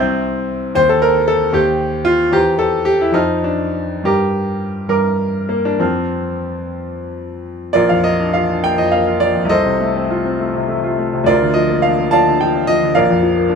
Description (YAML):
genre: classical, romantic character piece for solo piano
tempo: 61-78 BPM (dotted quarters)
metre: 6/8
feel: rubato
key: Bb major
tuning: A4 = 439 Hz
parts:
  - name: bright grand piano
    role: solo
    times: 0.0-13.6 s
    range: Bb1 to G6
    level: -14 LUFS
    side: equal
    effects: none
room: moderate stone room reverb, RT60 0.9 s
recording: none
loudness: -13 LUFS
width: side -6 dB against mid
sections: 0.0-7.7 A section; 7.7-13.6 B section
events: none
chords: 0.0 C; 0.8 Cm/Eb; 2.3 C7/E; 3.1 F; 4.0 Gm; 5.8 F; 7.7 Bb; 9.5 F7/C; 11.3 Bb/D; 12.9 Bb